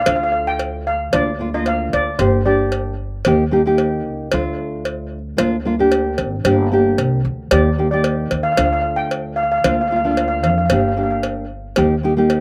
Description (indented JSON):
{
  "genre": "calypso",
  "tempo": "113 BPM",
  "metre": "4/4",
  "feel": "straight",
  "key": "Bb major",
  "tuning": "A4 = 435 Hz",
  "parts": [
    { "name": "steel pan", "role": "melody", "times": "0.0-3.0, 7.5-11.2 s", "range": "C5 to G5", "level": "-22 LUFS", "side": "equal", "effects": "none" },
    { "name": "nylon-string guitar", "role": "accompaniment", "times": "0.0-12.4 s", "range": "A3 to G4", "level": "-21 LUFS", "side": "equal", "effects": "none" },
    { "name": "upright bass", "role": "bass", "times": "0.0-12.4 s", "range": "G1 to F2", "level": "-25 LUFS", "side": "equal", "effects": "none" },
    { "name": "cowbell", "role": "percussion", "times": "0.1-12.4 s", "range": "none", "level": "-25 LUFS", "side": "equal", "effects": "slapback echo" }
  ],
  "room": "little or no reverb",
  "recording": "recorded outdoors, with no room sound",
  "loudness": "-18 LUFS",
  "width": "mono",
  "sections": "0.0-12.4 A section",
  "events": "none",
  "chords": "0.1 Dm; 1.1 Bb/D; 2.2 Gm; 3.3 Eb; 4.3 Dm; 5.4 Bb/D; 6.4 Gm; 7.5 Ebmaj7; 8.6 Dm; 9.6 Bb/D; 10.7 Gm; 11.8 Eb"
}